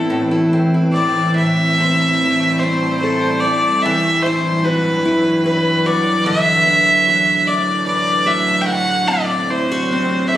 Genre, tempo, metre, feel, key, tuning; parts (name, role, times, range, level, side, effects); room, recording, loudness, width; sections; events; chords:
celtic folk, Celtic slow air; 74 BPM; 3/4; uneven beats, rubato; A dorian; A4 = 439 Hz
clear fiddle; melody; 0.0-10.4 s; A4 to G5; -16 LUFS; equal; slapback echo
picked steel-string acoustic guitar; accompaniment; 0.0-10.4 s; A2 to B4; -20 LUFS; equal
icy glass pad; sustained chords; 0.0-10.4 s; D2 to C4; -20 LUFS; equal; chorus, built-in reverb
moderate recital hall reverb, RT60 1.4 s; recorded on a phone in the room, studio reverb; -13 LUFS; side -12 dB against mid
0.0-1.4 A section; 1.4-10.4 B section
0.0 Am; 1.4 Am7; 3.8 Emadd9; 6.3 Bm7/D; 8.7 D7